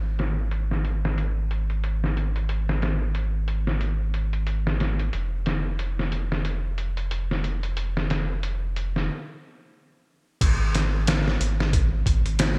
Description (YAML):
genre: trip hop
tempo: 91 BPM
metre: 4/4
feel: swing 58% on 16ths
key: unclear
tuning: A4 = 440 Hz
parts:
  - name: soft dub sub bass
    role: bass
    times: 0.0-12.6 s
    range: E#1 to G#1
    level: -28 LUFS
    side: equal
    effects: none
  - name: trip hop sampler-style drum kit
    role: drums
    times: 0.2-12.6 s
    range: crash cymbal, hi-hat, kick drum, snare drum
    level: -29 LUFS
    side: equal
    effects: low-pass filter on kick, low-pass filter on hats, low-pass filter on snare, low-pass filter on cymbals, low-pass filter on room, gated reverb
room: little or no reverb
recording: bright 1980s-style digital production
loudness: -26 LUFS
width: mono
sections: 0.0-10.4 A section; 10.4-12.6 B section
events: stop 9.1-10.4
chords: none